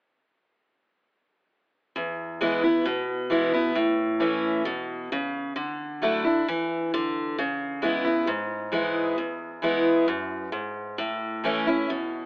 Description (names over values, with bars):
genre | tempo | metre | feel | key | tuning
country | 132 BPM | 4/4 | straight | E major | A4 = 444 Hz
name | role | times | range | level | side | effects
picked steel-string acoustic guitar | solo | 2.0-12.3 s | E2 to E4 | -23 LUFS | equal | none
room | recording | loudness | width
moderate plate reverb, RT60 2.5 s | telephone sound | -23 LUFS | side -27 dB against mid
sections
1.9-9.2 A section; 9.2-12.3 B section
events
none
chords
1.9 E; 3.8 A; 5.6 Dsus2; 7.4 C#m7; 9.2 E; 11.0 A